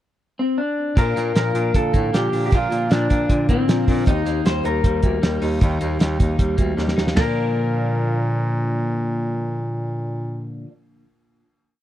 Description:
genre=jangly indie pop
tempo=155 BPM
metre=4/4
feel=straight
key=Bb major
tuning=A4 = 440 Hz
part: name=electric guitar through a small old amp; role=melody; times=0.4-10.6 s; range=C4 to C5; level=-23 LUFS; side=left 2 dB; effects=none
part: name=picked twelve-string acoustic guitar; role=accompaniment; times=1.0-10.7 s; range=Bb2 to Bb4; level=-31 LUFS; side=right 5 dB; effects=none
part: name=clean electric guitar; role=arpeggios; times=1.0-10.7 s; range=Bb2 to Eb4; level=-25 LUFS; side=left 2 dB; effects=none
part: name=clear bass clarinet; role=bass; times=1.0-10.6 s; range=D2 to Bb2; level=-24 LUFS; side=right 1 dB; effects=none
part: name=cloth-damped thuddy drum kit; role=drums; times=1.0-7.3 s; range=hi-hat, kick drum, ride cymbal, snare drum, toms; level=-18 LUFS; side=right 1 dB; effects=none
room=little or no reverb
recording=dry, close 1970s-style studio recording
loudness=-18 LUFS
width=side -12 dB against mid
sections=0.0-1.0 pickup bar; 1.0-7.2 verse; 7.2-10.3 final chord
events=drum fill 6.8-7.2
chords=0.0 N.C.; 1.0 Bb; 4.1 Eb; 7.2 Bb

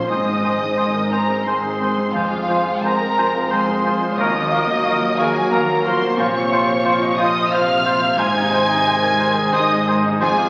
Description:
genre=cinematic, emotional film score for orchestra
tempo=89 BPM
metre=3/4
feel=rubato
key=unclear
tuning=A4 = 440 Hz
part: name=rich studio violin section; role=melody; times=0.0-10.5 s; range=F5 to Ab6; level=-25 LUFS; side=equal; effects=none
part: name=rich studio violin section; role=second line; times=0.0-10.5 s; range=F4 to Ab5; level=-27 LUFS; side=equal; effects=none
part: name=bright grand piano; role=accompaniment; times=0.0-10.5 s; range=Eb2 to F5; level=-24 LUFS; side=equal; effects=none
part: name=warm symphonic viola section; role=accompaniment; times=0.0-10.5 s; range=C3 to Gb4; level=-31 LUFS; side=equal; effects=none
part: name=mellow French horn section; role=sustained chords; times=0.0-10.5 s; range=C3 to C5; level=-31 LUFS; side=equal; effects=none
part: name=rich studio double bass section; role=bass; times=0.0-10.5 s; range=F1 to Eb2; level=-36 LUFS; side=equal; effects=none
part: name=warm studio cello section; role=bass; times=0.0-10.5 s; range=Eb2 to Bb2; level=-34 LUFS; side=equal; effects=none
part: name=clear clarinet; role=second line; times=0.1-10.4 s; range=C4 to Gb4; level=-34 LUFS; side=equal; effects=none
part: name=hollow concert flute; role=second line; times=0.1-10.3 s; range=F5 to Ab5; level=-31 LUFS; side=equal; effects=none
part: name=warm oboe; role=second line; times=0.1-10.4 s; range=Bb4 to C5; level=-26 LUFS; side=equal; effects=none
room=wet scoring stage reverb, RT60 1.8 s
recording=very old 78 rpm record, vinyl crackle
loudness=-18 LUFS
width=mono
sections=0.0-10.5 A section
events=none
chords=0.1 Ab; 2.1 Fm; 4.2 Ebmadd9; 6.2 Bbmadd9; 8.2 Ab

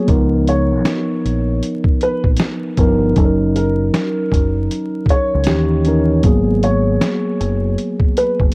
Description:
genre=lo-fi hip hop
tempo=78 BPM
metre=4/4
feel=swing 64% on 16ths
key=F# major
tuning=A4 = 440 Hz
part: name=dark upright piano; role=melody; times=0.0-8.4 s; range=A#4 to C#5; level=-21 LUFS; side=equal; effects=cassette tape
part: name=mellow tine electric piano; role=accompaniment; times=0.0-8.5 s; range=E3 to A#4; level=-17 LUFS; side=equal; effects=medium stereo tremolo, cassette tape
part: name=deep dub fingered electric bass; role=bass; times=0.1-8.5 s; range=F#1 to D#2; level=-18 LUFS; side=equal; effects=none
part: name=boom bap sampler-style drum kit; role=drums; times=0.1-8.5 s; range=hi-hat, kick drum, snare drum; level=-16 LUFS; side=equal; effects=cassette tape
room=light reverb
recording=home recording on cassette, vinyl crackle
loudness=-13 LUFS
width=side -28 dB against mid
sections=0.0-8.5 A section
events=none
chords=0.1 C#13; 3.2 F#6; 5.5 D#7b9; 6.2 G#m9

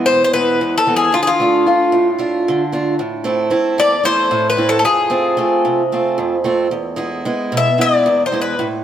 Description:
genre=greek folk, Greek bouzouki band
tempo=225 BPM (eighths)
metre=7/8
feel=straight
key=E phrygian dominant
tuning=A4 = 441 Hz
part: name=picked acoustic archtop guitar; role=accompaniment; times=0.0-8.8 s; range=E2 to F4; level=-16 LUFS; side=right 2 dB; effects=none
part: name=Greek bouzouki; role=melody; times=0.1-8.7 s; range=F4 to E5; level=-15 LUFS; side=left 3 dB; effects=none
room=wet plate reverb, RT60 2.5 s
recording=heard from further back in the room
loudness=-13 LUFS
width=side -10 dB against mid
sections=0.0-8.8 A section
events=none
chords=0.0 E; 1.1 Dm; 3.0 Am; 4.9 F; 6.7 E

